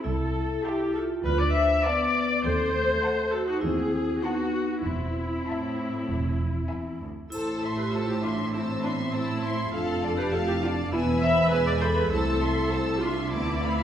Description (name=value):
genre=cinematic, playful, whimsical film cue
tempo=100 BPM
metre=4/4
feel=straight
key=A minor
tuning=A4 = 441 Hz
part: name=vibraphone with medium hard mallets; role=melody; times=0.0-13.8 s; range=B3 to C5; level=-31 LUFS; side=right 1 dB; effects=none
part: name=dark studio viola section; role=accompaniment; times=0.0-13.8 s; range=D4 to E5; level=-28 LUFS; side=left 1 dB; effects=none
part: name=dark French horn section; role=sustained chords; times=0.0-13.8 s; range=G#3 to E4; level=-33 LUFS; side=left 2 dB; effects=none
part: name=warm studio double bass section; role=bass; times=0.0-13.8 s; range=E1 to D#2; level=-32 LUFS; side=right 1 dB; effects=none
part: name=warm studio cello section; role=bass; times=0.1-13.8 s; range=C2 to A2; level=-33 LUFS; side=right 2 dB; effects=none
part: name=warm studio violin section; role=melody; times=0.7-13.8 s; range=F5 to E6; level=-38 LUFS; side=left 2 dB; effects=none
part: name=warm studio violin section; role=second line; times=0.7-13.8 s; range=B4 to C6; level=-34 LUFS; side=left 2 dB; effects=none
part: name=triangle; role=percussion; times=7.3-8.5 s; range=none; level=-45 LUFS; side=equal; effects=none
room=wet recital hall reverb, RT60 1.7 s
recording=heard from further back in the room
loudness=-24 LUFS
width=side -10 dB against mid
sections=0.0-13.8 A section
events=none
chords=0.1 Am/C; 1.2 Bm7b5/D; 2.4 D#dim7; 4.8 Am/E; 6.1 E; 7.3 Am; 9.7 Dm/F; 10.9 E; 12.1 Am/C; 13.3 Bm7b5/D